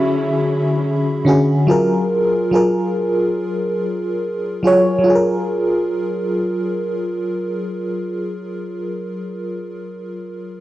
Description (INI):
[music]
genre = R&B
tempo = 71 BPM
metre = 4/4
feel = swing 54% on 16ths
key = F# major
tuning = A4 = 442 Hz
[part]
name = FM electric piano with soft pad layer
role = accompaniment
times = 0.0-10.6 s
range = D3 to C#5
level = -17 LUFS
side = equal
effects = chorus, tremolo, cassette tape
[part]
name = dark chamber string section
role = sustained chords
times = 0.0-1.6 s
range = D3 to E4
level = -27 LUFS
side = right 3 dB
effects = cassette tape
[sound]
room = light reverb, small room ambience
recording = home recording on cassette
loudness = -16 LUFS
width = side -15 dB against mid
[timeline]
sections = 0.0-5.1 A section; 5.1-8.4 B section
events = none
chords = 0.0 Dmaj9; 1.7 F#maj9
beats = 0.00 0.84 | 1.69 2.53 3.38 4.22 | 5.07 5.91 6.76 7.60